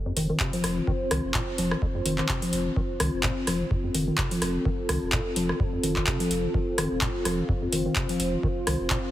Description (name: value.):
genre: acid house.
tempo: 127 BPM.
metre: 4/4.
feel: swing 55% on 16ths.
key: F mixolydian.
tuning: A4 = 443 Hz.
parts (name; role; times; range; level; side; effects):
dark analog pad; sustained chords; 0.0-9.1 s; C4 to C5; -30 LUFS; left 1 dB; chorus, sidechain pumping.
acid bass, square; riff; 0.1-9.0 s; F2 to F3; -30 LUFS; equal; analog chorus, sidechain pumping, ping-pong delay.
warm sub bass; bass; 0.2-8.9 s; Eb1 to C2; -32 LUFS; equal; tube saturation, sidechain pumping.
booming analog drum machine; drums; 0.2-9.0 s; handclaps, hi-hat, rim click; -29 LUFS; equal; none.
electronic kick drum; drums; 0.4-9.0 s; none; -30 LUFS; equal; none.
room: light reverb.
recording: heavily compressed radio sound.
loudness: -24 LUFS.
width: side -13 dB against mid.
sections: 0.0-9.1 A section.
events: none.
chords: 0.0 F5.